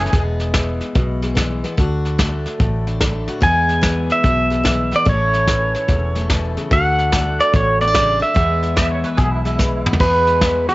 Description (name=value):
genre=honky-tonk and classic country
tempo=146 BPM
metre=4/4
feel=swing 65% on 8ths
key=E mixolydian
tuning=A4 = 440 Hz
part: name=twangy electric guitar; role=second line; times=0.0-0.2, 8.8-9.9 s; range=E4 to E5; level=-25 LUFS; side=right 1 dB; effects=tremolo, tape echo
part: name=picked steel-string acoustic guitar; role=accompaniment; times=0.0-10.7 s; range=E2 to G#4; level=-23 LUFS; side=left 2 dB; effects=none
part: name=vintage muted fingered electric bass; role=bass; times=0.0-10.7 s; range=E1 to E2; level=-21 LUFS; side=equal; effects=none
part: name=vintage brush drum kit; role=drums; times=0.1-10.7 s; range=crash cymbal, hi-hat, kick drum, snare drum, toms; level=-19 LUFS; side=equal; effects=cassette tape
part: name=pedal steel guitar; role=melody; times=3.4-10.7 s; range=G#4 to G#5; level=-17 LUFS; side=right 1 dB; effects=cassette tape
room=light reverb, small room ambience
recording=home recording on cassette, nothing above 7.8 kHz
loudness=-15 LUFS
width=side -19 dB against mid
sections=0.0-10.0 A section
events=drum fill 9.6-10.0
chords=0.1 E; 1.8 D; 3.4 E; 5.1 A; 6.7 D; 8.4 E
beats=| 0.13 0.54 0.95 1.36 | 1.77 2.19 2.60 3.01 | 3.42 3.83 4.24 4.65 | 5.07 5.48 5.89 6.30 | 6.71 7.12 7.53 7.95 | 8.36 8.77 9.18 9.59 | 10.00 10.41